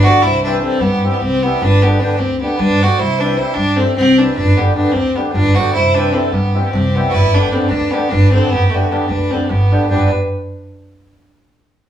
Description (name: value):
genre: balkan folk, Balkan wedding band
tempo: 304 BPM (eighths)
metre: 7/8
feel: straight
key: G major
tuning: A4 = 440 Hz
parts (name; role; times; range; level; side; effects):
- rich fiddle; melody; 0.0-10.1 s; A3 to F#4; -16 LUFS; equal; none
- rich violin; second line; 0.0-10.1 s; F#4 to D5; -22 LUFS; left 1 dB; none
- upright bass; bass; 0.0-10.1 s; G1 to G2; -17 LUFS; equal; none
- mellow accordion; accompaniment; 0.1-10.1 s; D3 to G4; -21 LUFS; left 2 dB; none
- darbuka; percussion; 4.4-10.1 s; none; -20 LUFS; right 1 dB; none
room: moderate stone room reverb, RT60 0.9 s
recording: band playing live in one room, small room ambience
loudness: -12 LUFS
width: side -10 dB against mid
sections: 0.0-9.9 A section; 9.9-11.3 B section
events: drum fill 9.1-9.9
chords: 0.3 C; 1.6 G; 3.0 C; 4.4 G; 5.8 C; 7.2 G